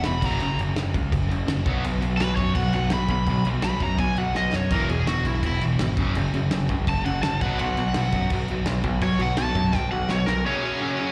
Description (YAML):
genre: punk rock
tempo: 167 BPM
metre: 4/4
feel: straight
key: unclear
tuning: A4 = 440 Hz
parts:
  - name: cranked stack guitar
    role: melody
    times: 0.0-11.1 s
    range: C#4 to B5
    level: -30 LUFS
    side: equal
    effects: overdrive, slapback echo, delay
  - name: distorted electric guitar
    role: riff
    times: 0.0-11.1 s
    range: E2 to B3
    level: -29 LUFS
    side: equal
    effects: distortion, slapback echo
  - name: growling picked electric bass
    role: bass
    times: 0.0-10.4 s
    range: E1 to F#2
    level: -28 LUFS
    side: equal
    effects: overdrive
  - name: loose indie drum kit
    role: drums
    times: 0.0-10.4 s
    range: crash cymbal, kick drum, snare drum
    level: -31 LUFS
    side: equal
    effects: none
room: small room ambience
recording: live gig heard through the venue's PA, recital hall reverb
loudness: -24 LUFS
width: mono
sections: 0.0-10.5 A section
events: overdriven electric guitar solo 0.0-10.5; drum fill 4.4-4.7, 9.7-10.5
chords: 0.2 F#; 1.7 B5; 4.7 E; 6.0 F#5; 7.4 B5; 10.5 F#5